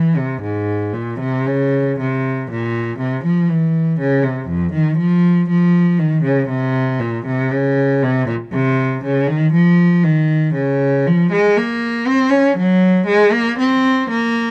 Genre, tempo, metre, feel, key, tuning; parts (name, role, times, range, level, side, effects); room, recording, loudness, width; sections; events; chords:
classical, baroque-style suite movement for unaccompanied cello; 59 BPM; 4/4; rubato; Bb minor from 8.5 s; A4 = 440 Hz
rich cello; solo; 0.0-14.5 s; F2 to Db4; -16 LUFS; equal
light reverb; dark, warm production, faint mains hum; -16 LUFS; mono
0.0-14.5 A section